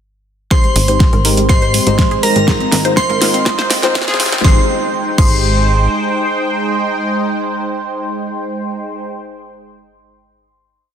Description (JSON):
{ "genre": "progressive house", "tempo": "122 BPM", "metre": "4/4", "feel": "straight", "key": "Ab major", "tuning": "A4 = 439 Hz", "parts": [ { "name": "glassy synth bell", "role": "melody", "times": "0.5-9.8 s", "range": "Bb4 to C6", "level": "-20 LUFS", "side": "equal", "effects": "chorus, sidechain pumping, tape echo" }, { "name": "glassy wavetable pluck", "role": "second line", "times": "0.5-9.8 s", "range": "Bb6 to C7", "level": "-26 LUFS", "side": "right 2 dB", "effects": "chorus, sidechain pumping, dub echo" }, { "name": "warm analog pad", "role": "sustained chords", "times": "0.5-9.0 s", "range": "Ab3 to G5", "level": "-20 LUFS", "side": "right 1 dB", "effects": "chorus, sidechain pumping" }, { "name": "analog pluck", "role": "arpeggios", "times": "0.5-9.8 s", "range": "Ab3 to C5", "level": "-22 LUFS", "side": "left 1 dB", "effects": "chorus, cassette tape, sidechain pumping, dub echo" }, { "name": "deep mellow chord stab", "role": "stabs", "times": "0.5-9.8 s", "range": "Ab3 to Eb5", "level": "-20 LUFS", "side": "left 2 dB", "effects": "chorus, sidechain pumping, dub echo" }, { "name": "electronic kick drum", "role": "drums", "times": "0.5-5.3 s", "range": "none", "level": "-13 LUFS", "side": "equal", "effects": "none" }, { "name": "pop drum kit", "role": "drums", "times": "0.5-5.3 s", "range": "crash cymbal, hi-hat, snare drum", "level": "-18 LUFS", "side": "right 1 dB", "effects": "none" }, { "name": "tight sequencer bass", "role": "bass", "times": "0.8-5.9 s", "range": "Ab1 to Ab2", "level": "-17 LUFS", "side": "equal", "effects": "sidechain pumping" } ], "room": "moderate lush hall reverb, RT60 1.8 s", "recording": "dense, heavily limited modern master, high-pass filter", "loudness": "-12 LUFS", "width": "side -8 dB against mid", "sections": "0.5-4.4 build; 4.4-8.4 final chord", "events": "build-up 0.5-4.4; drum fill 0.5-4.4; filter sweep on synth pluck 0.5-4.4; filter sweep 0.5-4.4", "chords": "0.5 Abmaj7; 2.5 Fm7/Ab; 4.4 Abmaj7", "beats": "| 0.51 1.00 1.49 1.99 | 2.48 2.97 3.46 3.95 | 4.45 4.94 5.43 5.92 | 6.41 6.90 7.40 7.89" }